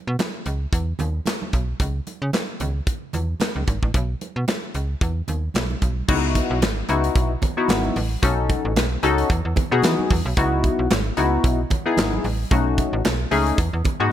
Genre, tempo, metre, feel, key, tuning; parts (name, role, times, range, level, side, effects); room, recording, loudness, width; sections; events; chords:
early-eighties boogie funk; 112 BPM; 4/4; swing 56% on 16ths; C# minor; A4 = 440 Hz
slap-like FM bass; bass; 0.1-14.1 s; G#1 to E3; -23 LUFS; right 1 dB
modern studio drum kit; drums; 0.2-14.0 s; crash cymbal, handclaps, hi-hat, kick drum, snare drum; -23 LUFS; equal; gated reverb
congas; percussion; 0.2-14.0 s; -32 LUFS; right 6 dB
funky polysynth comp; accompaniment; 6.1-14.1 s; G#3 to A4; -22 LUFS; left 4 dB; chorus
small room ambience; -19 LUFS; side -11 dB against mid
0.0-6.1 A section; 6.1-14.1 B section
0.0 Bsus2; 0.7 E5; 1.8 C#m; 3.9 Bsus2; 5.0 N.C.; 6.1 C#m11; 8.2 B9; 9.3 Emaj7; 10.4 C#m11; 12.5 B9; 13.6 Emaj7